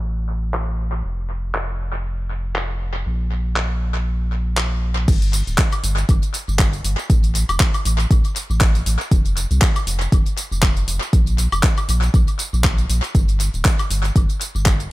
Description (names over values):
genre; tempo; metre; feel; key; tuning
deep house; 119 BPM; 4/4; swing 56% on 16ths; G minor; A4 = 440 Hz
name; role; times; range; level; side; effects
round analog bass; bass; 0.0-14.9 s; D1 to C2; -21 LUFS; equal; sidechain pumping
deep house drum kit; drums; 0.5-14.9 s; crash cymbal, handclaps, hi-hat, tambourine, woodblock; -24 LUFS; equal; overdrive, low-pass filter on snare, low-pass filter on hats, low-pass filter on perc, low-pass filter on cymbals, low-pass filter on room, tape echo
electronic kick drum; drums; 5.1-14.8 s; none; -16 LUFS; equal; overdrive
room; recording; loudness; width
little or no reverb; echo-heavy mix, low-pass filter; -17 LUFS; side -18 dB against mid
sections
0.0-5.1 A section; 5.1-14.9 B section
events
filter sweep on drum 0.0-5.1; filter sweep 0.0-5.1; drop 5.1-14.9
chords
none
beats
0.04 0.54 | 1.05 1.55 2.06 2.56 | 3.06 3.57 4.07 4.58 | 5.08 5.58 6.09 6.59 | 7.10 7.60 8.11 8.61 | 9.11 9.62 10.12 10.63 | 11.13 11.63 12.14 12.64 | 13.15 13.65 14.16 14.66